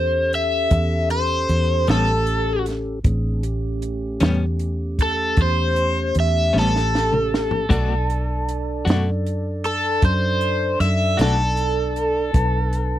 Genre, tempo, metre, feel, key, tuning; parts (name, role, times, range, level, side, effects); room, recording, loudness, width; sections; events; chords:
slow blues; 52 BPM (dotted quarters); 12/8; straight; A mixolydian; A4 = 441 Hz
cranked stack guitar; melody; 0.0-13.0 s; A4 to E5; -21 LUFS; left 1 dB; overdrive, phaser, slapback echo
mellow tonewheel organ; sustained chords; 0.0-13.0 s; A3 to D5; -28 LUFS; right 2 dB; slow rotary speaker
vintage muted fingered electric bass; bass; 0.0-13.0 s; A1 to F#2; -22 LUFS; equal
compact cocktail drum kit; drums; 0.3-12.9 s; crash cymbal, hi-hat, kick drum, snare drum, toms; -21 LUFS; equal
clean electric guitar; accompaniment; 1.9-11.4 s; A2 to F#4; -23 LUFS; left 4 dB; tremolo
little or no reverb; dry, close 1970s-style studio recording; -18 LUFS; side -13 dB against mid
0.0-13.0 A section
drum fill 6.5-7.7
0.0 A7; 7.7 Bm7